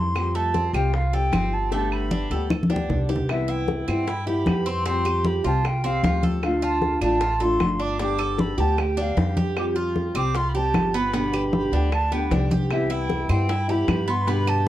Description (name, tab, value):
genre	latin, Cuban son and guajira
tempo	153 BPM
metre	4/4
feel	straight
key	C major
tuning	A4 = 440 Hz
part	silver concert flute	melody	0.0-14.7 s	E5 to D6	-27 LUFS	right 1 dB	none
part	nylon-string guitar	accompaniment	0.0-14.7 s	B2 to G4	-27 LUFS	left 2 dB	none
part	upright bass	bass	0.0-14.7 s	G1 to G2	-26 LUFS	equal	none
part	bongos	percussion	0.2-14.7 s	none	-32 LUFS	left 6 dB	none
part	claves	percussion	0.2-14.7 s	none	-35 LUFS	right 6 dB	none
part	congas	percussion	0.2-14.7 s	none	-26 LUFS	left 1 dB	none
part	Cuban tres	arpeggios	0.3-14.7 s	A3 to A4	-29 LUFS	right 4 dB	none
room	moderate studio reverb, RT60 0.6 s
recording	worn, warbling old tape, cassette tape, warbly pitch drift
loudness	-20 LUFS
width	side -13 dB against mid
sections	0.0-3.3 A section; 3.3-14.7 B section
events	drum fill 1.7-3.3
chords	0.2 Fadd9; 1.7 Gadd9; 3.3 Cmaj7; 4.9 Fadd9; 6.4 Dm; 8.0 Gadd9; 9.6 Fadd9; 11.1 G; 12.7 Cmaj7